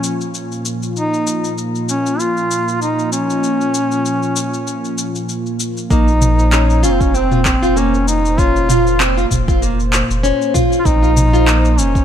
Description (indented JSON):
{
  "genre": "organic downtempo",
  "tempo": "97 BPM",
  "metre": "4/4",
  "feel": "swing 56% on 16ths",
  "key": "Bb minor",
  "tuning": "A4 = 439 Hz",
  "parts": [
    { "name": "warm duduk", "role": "melody", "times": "0.0-12.0 s", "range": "C4 to F4", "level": "-19 LUFS", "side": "equal", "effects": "ping-pong delay" },
    { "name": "warm analog pad", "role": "sustained chords", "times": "0.0-12.0 s", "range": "Bb2 to C5", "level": "-23 LUFS", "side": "right 1 dB", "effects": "chorus, sidechain pumping" },
    { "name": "afro-pop drum kit", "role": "drums", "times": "0.0-12.0 s", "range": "handclaps, shaker, toms", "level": "-20 LUFS", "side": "equal", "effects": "overdrive" },
    { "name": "nylon-string guitar", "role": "arpeggios", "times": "5.9-11.6 s", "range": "Bb3 to F4", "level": "-18 LUFS", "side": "equal", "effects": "ping-pong delay" },
    { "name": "warm sub bass", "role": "bass", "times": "5.9-12.0 s", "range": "F1 to Bb1", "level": "-16 LUFS", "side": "equal", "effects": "sidechain pumping" },
    { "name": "electronic kick drum", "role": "drums", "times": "5.9-12.0 s", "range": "none", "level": "-17 LUFS", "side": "equal", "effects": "overdrive" }
  ],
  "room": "light reverb",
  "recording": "none",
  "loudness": "-13 LUFS",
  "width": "side -9 dB against mid",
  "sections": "0.0-5.9 A section; 5.9-12.0 B section",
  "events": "none",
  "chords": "0.0 Bbm; 5.9 Bbmadd9",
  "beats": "0.34 | 0.96 1.57 2.19 2.81 | 3.43 4.05 4.67 5.29 | 5.91 6.52 7.14 7.76 | 8.38 9.00 9.62 10.23 | 10.85 11.47"
}